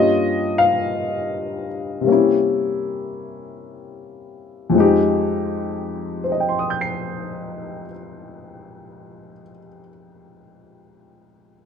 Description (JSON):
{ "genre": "jazz ballad", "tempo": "40-58 BPM", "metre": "4/4", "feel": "swing 68% on 8ths", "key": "F minor", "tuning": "A4 = 440 Hz", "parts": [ { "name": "warm baby grand piano", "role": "solo", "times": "0.0-11.7 s", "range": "F2 to C7", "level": "-19 LUFS", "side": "left 3 dB", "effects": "none" } ], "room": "moderate large studio reverb, RT60 0.8 s", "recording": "minimal, uncompressed stereo recording", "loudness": "-18 LUFS", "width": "side -7 dB against mid", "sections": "0.0-4.7 A section; 4.7-10.7 B section", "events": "slowing down 0.0-4.7", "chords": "0.0 Gm7b5; 2.1 C7b9; 4.7 Fm7", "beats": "0.93 2.08 3.34 | 4.75 6.23 7.71 9.18" }